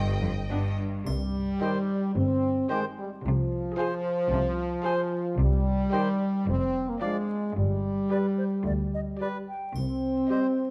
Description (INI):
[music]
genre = cinematic, playful, whimsical film cue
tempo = 110 BPM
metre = 4/4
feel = straight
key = C minor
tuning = A4 = 441 Hz
[part]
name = clear studio violin section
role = melody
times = 0.0-10.7 s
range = D5 to G5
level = -46 LUFS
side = equal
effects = none
[part]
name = rich studio violin section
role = second line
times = 0.0-10.7 s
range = B4 to Eb5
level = -47 LUFS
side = equal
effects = none
[part]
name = clear studio cello section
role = bass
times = 0.0-10.2 s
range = C2 to C3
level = -35 LUFS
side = equal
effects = none
[part]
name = rich studio double bass section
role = bass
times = 0.0-10.2 s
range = F1 to D2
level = -32 LUFS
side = equal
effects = none
[part]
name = rich studio viola section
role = accompaniment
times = 0.5-10.7 s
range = B3 to Ab4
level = -41 LUFS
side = equal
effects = none
[part]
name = warm French horn section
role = sustained chords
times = 1.1-10.7 s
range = F3 to C4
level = -30 LUFS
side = equal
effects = none
[part]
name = triangle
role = percussion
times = 1.1-2.1, 9.8-10.7 s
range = none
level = -52 LUFS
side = equal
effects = none
[part]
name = hollow concert flute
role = second line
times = 1.6-10.4 s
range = C5 to Ab5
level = -39 LUFS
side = equal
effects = none
[part]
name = warm cor anglais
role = second line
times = 1.6-10.5 s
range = B4 to D5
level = -38 LUFS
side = equal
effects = none
[part]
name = dark bassoon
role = accompaniment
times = 1.6-10.5 s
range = Eb3 to G3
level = -38 LUFS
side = equal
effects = none
[sound]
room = moderate scoring stage reverb, RT60 1.6 s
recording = close, detailed microphones, vinyl crackle, faint mains hum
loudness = -28 LUFS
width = mono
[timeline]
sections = 0.0-1.1 A section; 1.1-10.7 B section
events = none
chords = 0.0 N.C.; 1.1 Cm; 3.2 Fm/C; 5.4 Cm; 6.5 Ddim/F; 7.6 G; 9.8 Cm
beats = 0.50 | 1.06 1.61 2.15 2.70 | 3.23 3.77 4.31 4.84 | 5.39 5.92 6.46 7.01 | 7.56 8.11 8.66 9.20 | 9.75 10.30